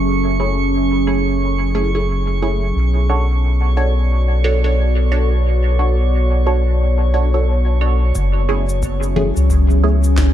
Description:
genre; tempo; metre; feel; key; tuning
ambient dub; 89 BPM; 4/4; swing 60% on 16ths; F# minor; A4 = 440 Hz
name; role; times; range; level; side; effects
warbly tape-like pad; sustained chords; 0.0-10.3 s; F#3 to D5; -21 LUFS; right 1 dB; chorus, built-in reverb
soft dub sub bass; bass; 0.0-10.3 s; F#1 to C#2; -16 LUFS; equal; none
drifting glass-harmonics texture; texture; 0.0-8.2 s; C#6; -29 LUFS; right 6 dB; chorus, built-in reverb
filtered dub chord stab; stabs; 0.4-10.0 s; A3 to C#5; -23 LUFS; right 2 dB; phaser, cassette tape, dub echo
electronic kick drum; drums; 8.2-10.3 s; none; -22 LUFS; equal; overdrive
electronic shaker, congas and snare drum; drums; 8.2-10.3 s; none; -25 LUFS; left 3 dB; dub echo
room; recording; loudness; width
little or no reverb; echo-heavy mix; -14 LUFS; side -11 dB against mid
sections
0.0-8.2 A section; 8.2-10.3 B section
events
filter sweep on ambient pad 0.0-8.2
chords
0.0 F#m9; 2.8 Bm9; 8.2 F#m9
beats
| 0.06 0.74 1.41 2.08 | 2.76 3.43 4.11 4.78 | 5.46 6.13 6.80 7.48 | 8.15 8.83 9.50 10.18

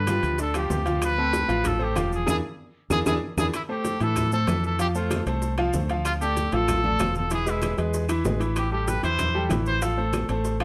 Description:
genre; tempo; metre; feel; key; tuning
latin, salsa; 191 BPM; 4/4; straight; A minor; A4 = 440 Hz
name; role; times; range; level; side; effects
clear trumpet; melody; 0.0-10.3 s; E4 to C5; -30 LUFS; equal; none
bright concert grand piano; accompaniment; 0.0-10.6 s; D3 to F5; -30 LUFS; equal; none
fingered electric bass; bass; 0.0-10.6 s; E1 to A2; -30 LUFS; equal; none
bongos; percussion; 0.1-10.6 s; none; -38 LUFS; equal; none
claves; percussion; 0.1-10.6 s; none; -43 LUFS; equal; none
congas; percussion; 0.1-10.6 s; none; -37 LUFS; equal; none
maracas; percussion; 0.1-10.6 s; none; -42 LUFS; equal; none
timbales; percussion; 0.1-10.6 s; none; -37 LUFS; equal; none
room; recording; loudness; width
moderate studio reverb, RT60 0.8 s; none; -25 LUFS; mono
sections
0.0-3.5 A section; 3.5-10.6 B section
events
band accent 2.3-3.5; drum fill 2.9-3.5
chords
0.0 G7; 1.0 Dm7; 2.3 E7; 3.5 Am; 4.8 F; 6.0 Dm; 7.3 E; 8.6 Am7; 9.8 F/A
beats
0.08 0.39 0.71 | 1.02 1.34 1.65 1.97 | 2.28 2.59 2.91 3.22 | 3.54 3.85 4.16 4.48 | 4.79 5.11 5.42 5.74 | 6.05 6.36 6.68 6.99 | 7.31 7.62 7.93 8.25 | 8.56 8.88 9.19 9.51 | 9.82 10.13 10.45

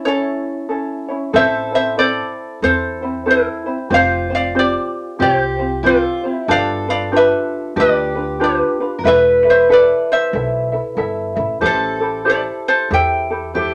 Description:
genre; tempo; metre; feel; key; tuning
Hawaiian; 93 BPM; 4/4; swing 62% on 8ths; A minor; A4 = 440 Hz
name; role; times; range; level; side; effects
ukulele; melody; 0.0-13.5 s; E4 to G5; -19 LUFS; equal; none
fingerpicked steel-string acoustic guitar; second line; 0.0-13.7 s; E4 to B4; -23 LUFS; equal; none
ukulele; accompaniment; 0.0-13.7 s; C4 to E5; -22 LUFS; equal; none
upright bass; bass; 1.3-13.7 s; E1 to E2; -29 LUFS; equal; none
room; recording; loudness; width
moderate studio reverb, RT60 0.5 s; none; -17 LUFS; mono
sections
0.0-1.3 A section; 1.3-13.7 B section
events
break 0.0-1.3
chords
0.0 A; 1.3 Am; 3.9 Fsus2; 6.5 G7; 9.1 Esus4; 11.6 Am7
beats
0.06 0.70 | 1.34 1.98 2.62 3.27 | 3.91 4.55 5.19 5.84 | 6.48 7.12 7.76 8.41 | 9.05 9.69 10.34 10.98 | 11.62 12.27 12.91 13.55

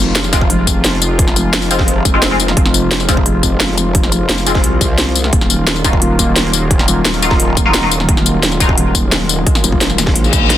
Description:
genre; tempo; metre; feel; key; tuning
dark technical drum and bass; 174 BPM; 4/4; straight; F phrygian; A4 = 440 Hz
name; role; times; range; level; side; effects
sweeping resonant pad; sustained chords; 0.0-10.6 s; C3 to F4; -19 LUFS; equal; chorus, vintage 12-bit sampler grit, sidechain pumping
growl bass; bass; 0.0-10.6 s; Eb1 to C2; -17 LUFS; equal; chorus, sidechain pumping
drum and bass drum kit; drums; 0.2-10.6 s; hi-hat, snare drum, tambourine; -15 LUFS; left 1 dB; small room ambience
band-passed chord stab; stabs; 0.3-8.7 s; Gb3 to F4; -18 LUFS; left 2 dB; phaser, ensemble chorus, digital delay
electronic kick drum; drums; 0.3-10.4 s; none; -15 LUFS; equal; overdrive, small room ambience
reverse cymbal; sound effects; 10.2-10.6 s; none; -15 LUFS; left 7 dB; none
room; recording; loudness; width
digital ambience; dense, heavily limited modern master; -10 LUFS; side -12 dB against mid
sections
0.0-10.6 A section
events
reverse cymbal 10.2-10.6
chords
0.0 Fm; 5.3 Ebmadd9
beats
0.15 0.50 0.84 | 1.19 1.53 1.88 2.22 | 2.57 2.91 3.26 3.60 | 3.95 4.29 4.64 4.98 | 5.33 5.67 6.02 6.36 | 6.71 7.05 7.40 7.74 | 8.09 8.43 8.78 9.12 | 9.46 9.81 10.15 10.50

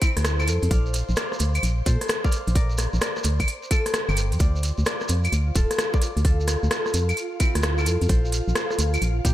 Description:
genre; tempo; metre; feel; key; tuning
UK garage, two-step garage; 130 BPM; 4/4; swing 66% on 16ths; D minor; A4 = 440 Hz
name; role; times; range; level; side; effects
concert harp; melody; 0.0-9.3 s; Bb3 to F5; -31 LUFS; left 2 dB; vintage 12-bit sampler grit, digital delay
ethereal airy pad; sustained chords; 0.0-9.3 s; F4 to C6; -36 LUFS; right 3 dB; ensemble chorus, built-in reverb, sidechain pumping
electronic kick drum; drums; 0.0-9.3 s; none; -21 LUFS; equal; overdrive
garage drum kit; drums; 0.0-9.3 s; claves, hi-hat, rim click; -27 LUFS; left 1 dB; none
shekere; percussion; 0.0-9.3 s; none; -34 LUFS; right 4 dB; none
organ-like FM bass; bass; 0.2-9.3 s; D1 to Bb2; -22 LUFS; equal; none
room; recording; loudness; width
digital ambience; none; -20 LUFS; side -13 dB against mid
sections
0.0-9.3 A section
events
none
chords
0.0 Dm7; 0.7 Bbadd9; 4.4 Dm; 8.1 Bb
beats
0.25 | 0.71 1.17 1.63 2.09 | 2.56 3.02 3.48 3.94 | 4.40 4.86 5.32 5.79 | 6.25 6.71 7.17 7.63 | 8.09 8.55 9.02

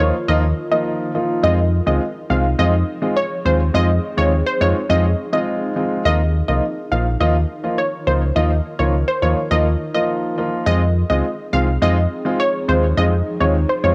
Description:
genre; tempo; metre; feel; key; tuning
dancehall; 104 BPM; 4/4; straight; unclear; A4 = 440 Hz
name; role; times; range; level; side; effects
analog pluck; melody; 0.0-13.9 s; C5 to F5; -23 LUFS; equal; chorus, cassette tape, tape echo
warm grand piano; accompaniment; 0.0-13.9 s; F3 to F4; -24 LUFS; equal; cassette tape
granular cloud pad; sustained chords; 0.0-13.9 s; Eb3 to Bb4; -32 LUFS; equal; built-in reverb, cassette tape
sub bass with octave; bass; 0.0-13.9 s; Bb1 to F2; -20 LUFS; equal; none
room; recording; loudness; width
light reverb, digital ambience; home recording on cassette; -18 LUFS; mono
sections
0.0-13.9 A section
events
none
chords
0.0 Ebsus2; 1.4 Fm7; 6.1 Ebsus2; 10.7 Fm7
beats
0.28 0.86 | 1.44 2.01 2.59 3.17 | 3.74 4.32 4.90 5.47 | 6.05 6.63 7.21 7.78 | 8.36 8.94 9.51 10.09 | 10.67 11.24 11.82 12.40 | 12.97 13.55

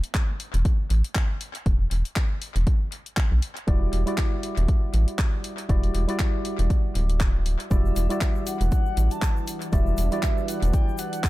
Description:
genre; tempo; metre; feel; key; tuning
deep house; 119 BPM; 4/4; swing 56% on 16ths; E minor; A4 = 443 Hz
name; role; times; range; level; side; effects
deep house drum kit; drums; 0.0-11.3 s; handclaps, hi-hat; -33 LUFS; left 1 dB; overdrive, analog delay
electronic kick drum; drums; 0.1-11.3 s; none; -23 LUFS; equal; overdrive
rubbery square bass; bass; 0.5-10.7 s; D1 to B1; -22 LUFS; equal; sidechain pumping
percussive organ stab; stabs; 3.7-11.3 s; G3 to D5; -30 LUFS; right 1 dB; chorus, sidechain pumping, analog delay
breathy flute-like synth lead; melody; 7.7-11.3 s; E5 to A5; -33 LUFS; equal; lush chorus, cassette tape, analog delay
warbly tape-like pad; sustained chords; 8.4-11.3 s; E3 to D5; -36 LUFS; equal; chorus, built-in reverb, sidechain pumping
egg shaker; percussion; 7.7-11.3 s; none; -42 LUFS; left 4 dB; none
room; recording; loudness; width
little or no reverb; echo-heavy mix; -22 LUFS; side -18 dB against mid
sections
0.0-11.3 A section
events
none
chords
0.0 Em9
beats
0.15 0.65 1.16 | 1.66 2.16 2.67 3.17 | 3.68 4.18 4.68 5.19 | 5.69 6.20 6.70 7.21 | 7.71 8.21 8.72 9.22 | 9.73 10.23 10.74 11.24

